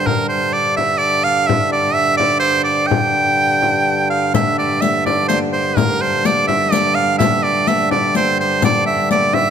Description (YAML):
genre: medieval dance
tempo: 126 BPM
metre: 3/4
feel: straight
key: unclear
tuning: A4 = 440 Hz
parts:
  - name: edgy shawm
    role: melody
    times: 0.0-9.5 s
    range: Bb4 to G5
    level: -15 LUFS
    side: right 3 dB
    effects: none
  - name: pedal harmonium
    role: drone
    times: 0.0-9.5 s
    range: G2 to D3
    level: -21 LUFS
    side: left 1 dB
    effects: none
  - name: frame drum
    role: percussion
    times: 0.1-9.5 s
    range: none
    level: -23 LUFS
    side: left 6 dB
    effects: none
  - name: riq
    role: percussion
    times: 4.3-9.3 s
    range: none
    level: -22 LUFS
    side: left 6 dB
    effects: none
room: moderate concert hall reverb, RT60 2.3 s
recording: none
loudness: -14 LUFS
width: side -8 dB against mid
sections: 0.0-4.3 A section; 4.3-9.5 A section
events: none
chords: none